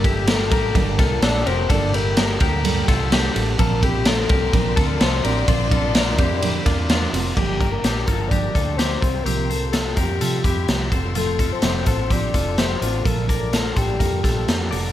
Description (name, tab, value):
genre	jangly indie pop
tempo	127 BPM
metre	4/4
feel	straight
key	unclear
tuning	A4 = 440 Hz
part	soft octave-layered synth lead	melody	0.0-14.7 s	G4 to D5	-26 LUFS	left 4 dB	chorus, plate reverb
part	fingerpicked steel-string acoustic guitar	accompaniment	0.0-14.9 s	G2 to Bb4	-27 LUFS	right 6 dB	none
part	warm studio string section	sustained chords	0.0-14.9 s	A3 to C6	-34 LUFS	left 4 dB	none
part	twelve-string electric guitar	arpeggios	0.0-14.9 s	C4 to D5	-28 LUFS	left 6 dB	none
part	vintage muted fingered electric bass	bass	0.0-14.9 s	F1 to C3	-24 LUFS	equal	none
part	raw garage drum kit	drums	0.0-14.8 s	crash cymbal, hi-hat, kick drum, ride cymbal, snare drum	-20 LUFS	equal	none
room	light reverb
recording	none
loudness	-17 LUFS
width	side -12 dB against mid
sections	0.0-7.4 A section; 7.4-14.9 B section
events	none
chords	0.0 Bbadd9; 7.4 Gm7; 9.0 Csus4; 10.9 F; 13.1 Bbmaj7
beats	0.28 0.76 1.23 | 1.70 2.17 2.64 3.12 | 3.59 4.06 4.53 5.00 | 5.48 5.95 6.42 6.89 | 7.37 7.84 8.31 8.79 | 9.26 9.74 10.21 10.69 | 11.16 11.63 12.11 12.58 | 13.06 13.53 14.00 14.48